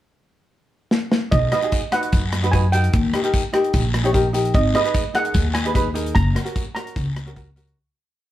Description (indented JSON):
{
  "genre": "calypso",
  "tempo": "149 BPM",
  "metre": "4/4",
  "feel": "straight",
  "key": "B major",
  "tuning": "A4 = 439 Hz",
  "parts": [
    { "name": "modern studio drum kit", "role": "drums", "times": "0.9-7.8 s", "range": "hi-hat, kick drum, rim click, snare drum", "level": "-22 LUFS", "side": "equal", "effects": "none" },
    { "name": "steel pan", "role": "melody", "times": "1.3-7.5 s", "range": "D#5 to A#5", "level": "-23 LUFS", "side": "right 3 dB", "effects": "none" },
    { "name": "upright bass", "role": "bass", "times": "1.3-7.7 s", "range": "F#1 to F#2", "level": "-20 LUFS", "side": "equal", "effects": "none" },
    { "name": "guiro", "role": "percussion", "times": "1.3-7.7 s", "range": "none", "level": "-33 LUFS", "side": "left 3 dB", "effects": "none" },
    { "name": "ukulele", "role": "accompaniment", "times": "1.5-7.8 s", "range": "C#4 to C#5", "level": "-23 LUFS", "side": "left 1 dB", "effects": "none" }
  ],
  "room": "wet studio reverb, RT60 0.6 s",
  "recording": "heard from further back in the room",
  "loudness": "-17 LUFS",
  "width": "side -13 dB against mid",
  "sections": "0.0-1.3 pickup bar; 1.3-7.8 verse",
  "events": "drum fill 0.9-1.3; fade-out 6.2-7.8",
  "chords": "0.0 N.C.; 1.3 B; 2.9 D#; 4.5 G#m; 6.2 F#"
}